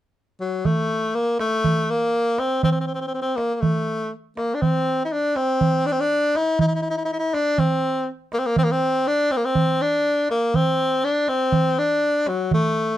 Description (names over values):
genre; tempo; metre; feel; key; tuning
Arabic maqam ensemble; 121 BPM; 4/4; straight; unclear; A4 = 440 Hz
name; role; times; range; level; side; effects
bright tenor saxophone; melody; 0.4-13.0 s; F#3 to E4-48c; -20 LUFS; left 1 dB; none
darbuka; percussion; 0.7-12.8 s; none; -22 LUFS; right 2 dB; none
room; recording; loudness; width
moderate studio reverb, RT60 0.5 s; dark, warm production; -19 LUFS; side -13 dB against mid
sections
0.6-13.0 A section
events
none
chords
none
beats
0.15 | 0.65 1.15 1.64 2.14 | 2.63 3.13 3.62 4.12 | 4.62 5.11 5.60 6.10 | 6.59 7.09 7.58 8.07 | 8.57 9.06 9.55 10.05 | 10.54 11.03 11.53 12.02 | 12.51